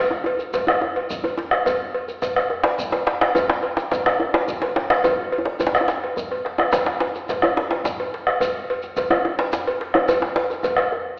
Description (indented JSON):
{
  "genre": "west african traditional, West African drum ensemble",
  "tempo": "142 BPM (dotted quarters)",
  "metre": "12/8",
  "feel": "straight",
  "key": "none",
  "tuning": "none",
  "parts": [
    { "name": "bombo", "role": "percussion", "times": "0.1-11.0 s", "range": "none", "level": "-26 LUFS", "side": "equal", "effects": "none" },
    { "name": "djembe", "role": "percussion", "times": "0.1-10.5 s", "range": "none", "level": "-26 LUFS", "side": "equal", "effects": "none" },
    { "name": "cowbell", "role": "percussion", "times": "0.3-10.9 s", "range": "none", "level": "-26 LUFS", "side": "equal", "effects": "none" },
    { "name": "djembe", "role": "percussion", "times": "0.3-11.1 s", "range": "none", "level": "-36 LUFS", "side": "equal", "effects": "none" },
    { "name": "shekere", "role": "percussion", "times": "0.4-10.8 s", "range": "none", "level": "-42 LUFS", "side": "equal", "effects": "none" }
  ],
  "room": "wet recital hall reverb, RT60 1.5 s",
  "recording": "recorded in a church or concert hall, AM radio sound",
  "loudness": "-22 LUFS",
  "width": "mono",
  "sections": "0.0-11.2 A section",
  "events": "none",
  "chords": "none",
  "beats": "0.39 0.81 1.24 | 1.66 2.08 2.51 2.93 | 3.35 3.77 4.20 4.62 | 5.04 5.46 5.88 6.30 | 6.73 7.15 7.57 7.99 | 8.41 8.83 9.24 9.66 | 10.08 10.50 10.92"
}